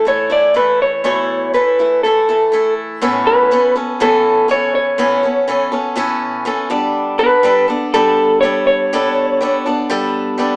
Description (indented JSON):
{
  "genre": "rock",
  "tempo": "122 BPM",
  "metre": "4/4",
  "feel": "straight",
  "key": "A mixolydian from 3.0 s",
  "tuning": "A4 = 441 Hz",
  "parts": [
    { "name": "electric guitar through a small old amp", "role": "melody", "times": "0.0-9.6 s", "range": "A4 to D5", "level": "-12 LUFS", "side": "equal", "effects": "spring reverb" },
    { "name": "picked swing-style acoustic guitar", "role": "accompaniment", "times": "0.0-10.6 s", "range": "E2 to A4", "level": "-17 LUFS", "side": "equal", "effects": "none" }
  ],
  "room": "moderate stone room reverb, RT60 1.0 s",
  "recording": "band playing live in one room, small speaker sound",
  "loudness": "-12 LUFS",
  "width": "side -32 dB against mid",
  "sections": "0.0-3.0 A section; 3.0-10.6 B section",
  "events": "none",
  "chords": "0.0 Esus4; 3.0 Aadd9; 6.7 Gadd9"
}